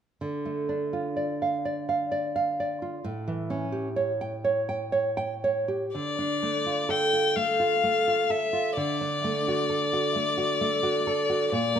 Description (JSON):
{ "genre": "romantic duo for violin and classical guitar", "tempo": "43 BPM (dotted quarters)", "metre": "6/8", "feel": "rubato", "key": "D minor", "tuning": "A4 = 439 Hz", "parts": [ { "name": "nylon-string guitar", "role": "accompaniment", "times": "0.2-11.8 s", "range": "A2 to G5", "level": "-27 LUFS", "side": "right 3 dB", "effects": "none" }, { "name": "rich violin", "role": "melody", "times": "6.0-11.8 s", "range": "D5 to G5", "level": "-26 LUFS", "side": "left 5 dB", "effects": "none" } ], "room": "moderate recital hall reverb, RT60 1.6 s", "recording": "minimal, uncompressed stereo recording", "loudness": "-24 LUFS", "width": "side -8 dB against mid", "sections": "0.2-6.0 A section; 6.0-11.8 B section", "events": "none", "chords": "0.2 Dm; 3.1 A7; 6.0 Dm; 8.8 D", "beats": "| 0.22 1.66 | 3.05 4.45 | 5.95 7.36 | 8.78 10.16 | 11.54" }